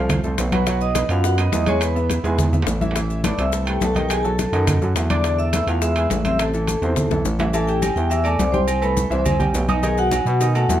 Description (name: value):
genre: latin, salsa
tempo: 210 BPM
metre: 4/4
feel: straight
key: A minor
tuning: A4 = 440 Hz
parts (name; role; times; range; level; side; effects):
- vibraphone with medium hard mallets; melody; 0.0-10.8 s; F4 to E6; -23 LUFS; left 1 dB; none
- clear concert grand piano; accompaniment; 0.0-10.8 s; C3 to D#6; -26 LUFS; right 2 dB; none
- growling FM bass; bass; 0.0-10.8 s; A1 to B2; -21 LUFS; equal; none
- bongos and cowbell; percussion; 0.1-10.8 s; none; -30 LUFS; left 10 dB; none
- congas; percussion; 0.1-10.8 s; none; -26 LUFS; left 1 dB; none
- maracas; percussion; 0.1-10.8 s; none; -34 LUFS; left 6 dB; none
- timbales and agogo bells; percussion; 0.1-10.8 s; none; -29 LUFS; right 4 dB; none
room: light reverb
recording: close, detailed microphones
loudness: -17 LUFS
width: side -11 dB against mid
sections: 0.0-7.5 A section; 7.5-10.8 B section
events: drum fill 2.2-3.0, 6.8-7.5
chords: 0.0 F; 0.7 B; 1.8 E; 3.0 Amadd9; 4.1 B7; 5.2 E7sus4; 5.8 E; 6.4 Am; 7.5 Am7; 8.7 C6; 9.8 B7